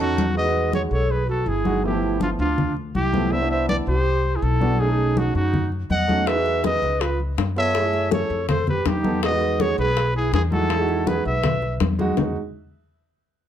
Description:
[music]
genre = Afro-Cuban jazz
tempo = 162 BPM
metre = 4/4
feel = straight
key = E major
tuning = A4 = 441 Hz
[part]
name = warm trumpet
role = melody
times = 0.0-11.8 s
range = F4 to F#5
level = -25 LUFS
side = left 1 dB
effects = plate reverb
[part]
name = mellow hollow silver concert flute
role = second line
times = 0.0-11.8 s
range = D4 to D#5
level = -27 LUFS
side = right 3 dB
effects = none
[part]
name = warm grand piano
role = accompaniment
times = 0.0-12.4 s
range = F3 to A4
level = -26 LUFS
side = right 3 dB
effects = none
[part]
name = upright bass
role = bass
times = 0.0-12.3 s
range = G1 to F#2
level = -25 LUFS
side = left 1 dB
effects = none
[part]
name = congas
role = percussion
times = 0.0-12.3 s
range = none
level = -27 LUFS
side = left 2 dB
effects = none
[part]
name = cowbell and bongos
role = percussion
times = 0.2-0.4, 6.3-12.3 s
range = none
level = -28 LUFS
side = left 8 dB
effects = none
[sound]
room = moderate club reverb, RT60 0.5 s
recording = none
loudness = -19 LUFS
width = side -10 dB against mid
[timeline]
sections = 0.4-12.2 A section; 12.2-13.5 B section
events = none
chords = 0.4 Emaj7; 1.8 G13; 3.3 Cmaj7; 4.8 B13; 6.3 Emaj7; 7.0 C#aug7; 7.7 F#m7; 8.5 F7#11; 9.2 Emaj7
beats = | 0.36 0.73 1.10 1.47 | 1.84 2.21 2.58 2.95 | 3.31 3.69 4.05 4.42 | 4.79 5.16 5.53 5.90 | 6.27 6.64 7.01 7.38 | 7.75 8.12 8.49 8.86 | 9.23 9.60 9.96 10.33 | 10.70 11.07 11.44 11.81 | 12.18

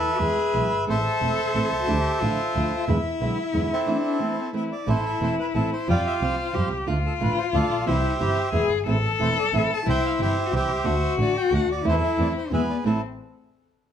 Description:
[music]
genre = tango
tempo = 180 BPM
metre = 3/4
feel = rubato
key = A minor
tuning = A4 = 438 Hz
[part]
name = bandoneon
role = melody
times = 0.0-13.0 s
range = C4 to A5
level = -26 LUFS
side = right 2 dB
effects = none
[part]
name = dark cello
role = second line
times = 0.0-13.0 s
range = B3 to A4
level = -26 LUFS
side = left 6 dB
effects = none
[part]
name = flamenco guitar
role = accompaniment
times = 0.2-13.0 s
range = A2 to F#4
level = -28 LUFS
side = right 3 dB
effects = none
[part]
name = dark double bass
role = bass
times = 0.2-13.0 s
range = E1 to F2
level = -27 LUFS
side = right 1 dB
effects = none
[sound]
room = moderate studio reverb, RT60 0.8 s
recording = none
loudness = -21 LUFS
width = side -9 dB against mid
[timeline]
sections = 0.0-4.9 A section; 4.9-12.9 B section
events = none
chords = 0.2 E; 0.9 Am; 1.9 Dmadd9; 2.9 E7; 3.9 Am; 5.9 Fsus2; 6.9 Dm; 7.9 C; 8.5 E; 8.9 Am; 9.9 C; 10.9 D; 11.8 Am/E; 12.5 E; 12.9 Am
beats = 0.20 0.54 | 0.87 1.21 1.54 | 1.88 2.21 2.54 | 2.88 3.21 3.54 | 3.87 4.20 4.54 | 4.88 5.21 5.55 | 5.88 6.21 6.54 | 6.88 7.21 7.53 | 7.86 8.20 8.53 | 8.87 9.20 9.54 | 9.87 10.20 10.53 | 10.86 11.19 11.52 | 11.85 12.18 12.52 | 12.86

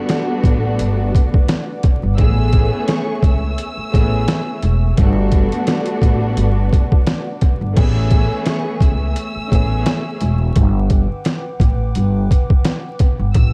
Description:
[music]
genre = hip hop, boom-bap hip-hop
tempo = 86 BPM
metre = 4/4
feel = swing 54% on 16ths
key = unclear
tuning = A4 = 440 Hz
[part]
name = clear studio string section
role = accompaniment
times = 0.0-10.2 s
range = E3 to G#4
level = -25 LUFS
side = equal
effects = cassette tape, high-pass filter, low-pass filter, analog delay
[part]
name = hollow soft pad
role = sustained chords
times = 0.0-13.5 s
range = A3 to D6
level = -33 LUFS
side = equal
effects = chorus, high-pass filter, low-pass filter
[part]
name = trip hop sampler-style drum kit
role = drums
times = 0.1-13.5 s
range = crash cymbal, hi-hat, kick drum, snare drum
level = -18 LUFS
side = equal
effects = none
[part]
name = upright bass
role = bass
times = 0.4-13.5 s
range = E1 to C#2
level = -20 LUFS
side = equal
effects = none
[part]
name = warm symphonic violin section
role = melody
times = 2.2-13.5 s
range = C#6 to E6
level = -34 LUFS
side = equal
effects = high-pass filter, low-pass filter, analog delay
[sound]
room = small room ambience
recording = echo-heavy mix, vinyl crackle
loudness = -16 LUFS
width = mono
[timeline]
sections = 0.0-7.8 A section; 7.8-13.5 A section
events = none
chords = 0.0 Gmaj7; 2.2 Amaj7; 5.0 Gmaj7; 7.8 Amaj7; 10.6 Gmaj7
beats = 0.10 0.79 1.49 | 2.19 2.88 3.58 4.28 | 4.98 5.68 6.37 7.07 | 7.77 8.47 9.16 9.86 | 10.56 11.26 11.96 12.65 | 13.35

